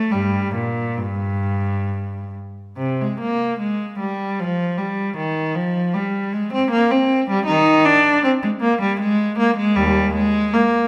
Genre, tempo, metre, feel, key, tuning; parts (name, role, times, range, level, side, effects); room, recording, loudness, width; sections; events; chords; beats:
classical, baroque-style suite movement for unaccompanied cello; 64-79 BPM; 3/4; rubato; A4 = 444 Hz
warm cello; solo; 0.0-10.9 s; Eb2 to Eb4; -20 LUFS; equal
wet recital hall reverb, RT60 1.5 s; -20 LUFS; mono
0.0-2.8 A section; 2.8-10.9 A section
| 0.11 0.99 1.86 | 2.77 3.60 4.38 | 5.15 5.93 6.69 | 7.45 8.22 8.99 | 9.76 10.53